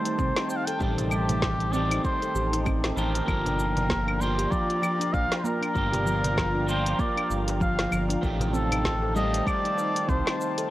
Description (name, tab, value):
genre	organic downtempo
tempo	97 BPM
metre	4/4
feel	swing 58% on 16ths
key	unclear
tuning	A4 = 441 Hz
part	trumpet with cup mute	melody	0.0-10.6 s	G4 to G5	-29 LUFS	equal	tape echo
part	electric guitar at the edge of break-up	accompaniment	0.0-10.7 s	Eb3 to G4	-33 LUFS	right 2 dB	phaser, sidechain pumping
part	warbly tape-like pad	sustained chords	0.0-10.7 s	Eb4 to Bb5	-35 LUFS	equal	chorus, built-in reverb, sidechain pumping
part	deep house drum kit	drums	0.1-10.7 s	claves, hi-hat, shaker, snare drum	-32 LUFS	equal	none
part	handpan	arpeggios	0.2-10.7 s	F3 to A4	-31 LUFS	equal	digital delay
part	smooth gliding synth bass	bass	0.2-10.2 s	G1 to C2	-29 LUFS	equal	none
part	electronic kick drum	drums	0.2-10.2 s	none	-30 LUFS	equal	none
part	darbuka	percussion	0.4-10.4 s	none	-37 LUFS	right 1 dB	none
part	drifting glass-harmonics texture	texture	4.6-10.7 s	F4 to F5	-41 LUFS	left 1 dB	none
room	light reverb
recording	worn, warbling old tape, cassette tape, warbly pitch drift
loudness	-23 LUFS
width	side -15 dB against mid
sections	0.0-10.7 A section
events	none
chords	0.0 Am7b5; 3.3 Gm7; 8.2 Am7b5